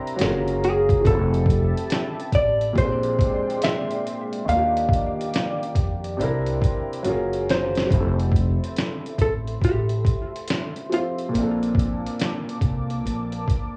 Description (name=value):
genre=lo-fi hip hop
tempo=70 BPM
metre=4/4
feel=swing 64% on 16ths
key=F major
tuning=A4 = 441 Hz
part: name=felt-muted upright piano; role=accompaniment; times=0.0-13.8 s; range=Bb2 to E5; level=-30 LUFS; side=equal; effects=cassette tape
part: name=dark analog pad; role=sustained chords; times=0.0-13.8 s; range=Ab3 to D6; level=-36 LUFS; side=equal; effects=chorus
part: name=dusty soul sampler-style drum kit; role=drums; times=0.1-13.7 s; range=hi-hat, kick drum, snare drum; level=-26 LUFS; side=equal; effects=cassette tape
part: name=upright bass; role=bass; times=0.2-13.4 s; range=F1 to F2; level=-28 LUFS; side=equal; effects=none
part: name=vintage hollow-body jazz guitar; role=melody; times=0.6-12.2 s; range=F4 to F5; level=-27 LUFS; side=equal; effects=cassette tape, tape echo
room=light reverb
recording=home recording on cassette, small room ambience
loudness=-23 LUFS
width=mono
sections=0.0-7.9 A section; 7.9-13.8 B section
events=drum fill 7.0-7.9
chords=0.2 Gbmaj9; 1.1 Fmaj9; 2.8 Bb13; 4.5 Ebmaj9; 6.2 C7; 7.0 Gbmaj9; 7.9 Fmaj7; 11.3 Bbmaj7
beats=0.19 | 1.05 1.91 2.76 3.62 | 4.48 5.33 6.19 7.05 | 7.91 8.76 9.62 10.48 | 11.34 12.19 13.05